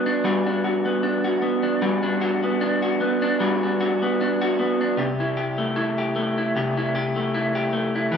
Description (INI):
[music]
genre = indie pop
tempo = 76 BPM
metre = 4/4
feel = swing 55% on 16ths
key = unclear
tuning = A4 = 440 Hz
[part]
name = electric guitar through a small old amp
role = solo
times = 0.0-8.2 s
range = C3 to G4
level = -20 LUFS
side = equal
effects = vibrato effect
[sound]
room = wet large studio reverb, RT60 1.0 s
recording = band playing live in one room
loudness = -20 LUFS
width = side -6 dB against mid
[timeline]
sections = 0.0-8.2 A section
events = none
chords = 0.0 Gmaj7; 5.0 C6